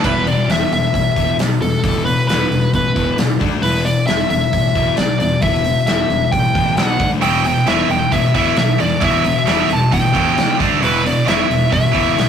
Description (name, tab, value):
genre	hard rock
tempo	134 BPM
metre	4/4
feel	straight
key	E minor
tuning	A4 = 441 Hz
part	bluesy overdriven lead guitar	melody	0.0-12.3 s	A4 to A5	-18 LUFS	left 1 dB	distortion
part	heavy high-gain guitar	riff	0.0, 7.2-12.3 s	E2 to D4	-18 LUFS	right 7 dB	distortion
part	sludgy distorted guitar	riff	0.0-12.3 s	E2 to D4	-19 LUFS	left 4 dB	overdrive
part	fuzz fingered electric bass	bass	0.0-12.3 s	E1 to E2	-25 LUFS	right 1 dB	overdrive
part	big rock drum kit	drums	0.0-12.3 s	crash cymbal, hi-hat, kick drum, snare drum	-20 LUFS	right 1 dB	none
room	moderate stone room reverb, RT60 1.1 s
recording	rough rehearsal-room recording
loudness	-13 LUFS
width	side -8 dB against mid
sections	0.0-12.3 A section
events	none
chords	0.0 E5; 3.4 D5; 3.6 E5; 6.8 B5; 7.0 D5; 7.2 Em; 10.6 D5; 10.8 E5